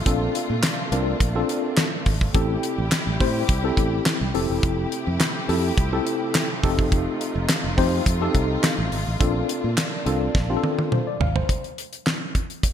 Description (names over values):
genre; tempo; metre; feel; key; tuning
early-eighties boogie funk; 105 BPM; 4/4; straight; unclear; A4 = 440 Hz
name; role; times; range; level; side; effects
warm studio string section; sustained chords; 0.0-11.5 s; C3 to G4; -30 LUFS; equal; none
fingered electric bass; bass; 0.0-11.4 s; E1 to Bb2; -25 LUFS; right 1 dB; none
tine electric piano; accompaniment; 0.1-11.6 s; C4 to F5; -26 LUFS; left 2 dB; overdrive, fast stereo tremolo
damped 70s drum kit; drums; 0.1-12.7 s; handclaps, hi-hat, kick drum, snare drum, toms; -23 LUFS; equal; gated reverb
room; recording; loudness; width
moderate plate reverb, RT60 1.7 s, small room ambience; bright 1980s-style digital production; -20 LUFS; side -9 dB against mid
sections
0.0-11.5 A section; 11.5-12.7 B section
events
drum fill 10.3-11.5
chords
0.1 Bbmaj9; 2.3 Am7; 4.3 Fmaj9; 6.6 F7; 9.2 Bbmaj9; 11.5 N.C.